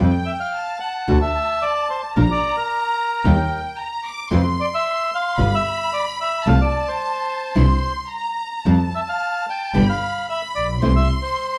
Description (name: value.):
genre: tango.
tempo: 111 BPM.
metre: 4/4.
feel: rubato.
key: F major.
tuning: A4 = 441 Hz.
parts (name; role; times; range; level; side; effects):
rich studio violin section; second line; 0.0-11.6 s; G5 to D6; -29 LUFS; equal; none.
nylon-string guitar; accompaniment; 0.0-10.9 s; C3 to G4; -24 LUFS; equal; none.
clear double bass; bass; 0.0-11.1 s; G1 to F2; -21 LUFS; equal; none.
bandoneon; melody; 0.3-11.6 s; Bb4 to G5; -25 LUFS; equal; plate reverb.
room: wet studio reverb, RT60 0.8 s.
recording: heard from further back in the room.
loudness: -21 LUFS.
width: mono.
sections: 0.0-11.6 A section.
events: none.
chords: 0.0 Fadd9; 1.1 D5; 2.2 Bb; 3.2 Eb; 4.3 Fmaj7(no3); 5.4 G7; 6.5 F/C; 7.6 C; 8.7 Fadd9; 9.7 G; 10.8 C.